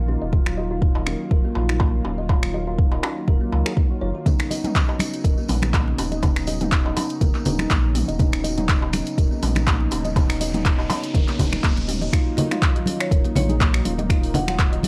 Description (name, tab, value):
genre	afro house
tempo	122 BPM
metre	4/4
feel	swing 54% on 16ths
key	Eb minor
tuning	A4 = 441 Hz
part	warm analog pad	sustained chords	0.0-14.9 s	C#3 to F4	-36 LUFS	equal	chorus, sidechain pumping
part	warm sub bass	bass	0.0-14.8 s	Eb1 to Db2	-28 LUFS	equal	sidechain pumping
part	kalimba	arpeggios	0.1-14.9 s	Bb3 to Eb5	-33 LUFS	equal	sidechain pumping, low-pass filter, tape echo
part	mellow tine electric piano	stabs	0.3-14.9 s	Gb3 to Ab4	-32 LUFS	equal	sidechain pumping, tape echo
part	electronic kick drum	drums	0.3-14.7 s	none	-22 LUFS	equal	studio reverb
part	deep house drum kit	drums	0.5-14.9 s	finger snaps, handclaps, hi-hat, toms	-29 LUFS	equal	overdrive, studio reverb
part	darbuka	percussion	1.0-11.5 s	none	-33 LUFS	equal	none
part	congas	percussion	4.3-14.9 s	none	-28 LUFS	equal	none
part	tambourine	percussion	4.3-12.1 s	none	-42 LUFS	equal	none
part	riser	sound effects	9.3-12.1 s	none	-40 LUFS	equal	none
part	marimba with hard mallets	melody	13.0-14.6 s	Db5 to Gb5	-33 LUFS	equal	none
room	studio reverb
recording	dry, gritty hardware recording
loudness	-21 LUFS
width	mono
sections	0.0-12.1 A section; 12.1-14.9 B section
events	riser 9.3-12.1; drop 12.1-14.9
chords	0.0 Ebmadd9; 4.3 Badd9/D#; 12.1 Ebmadd9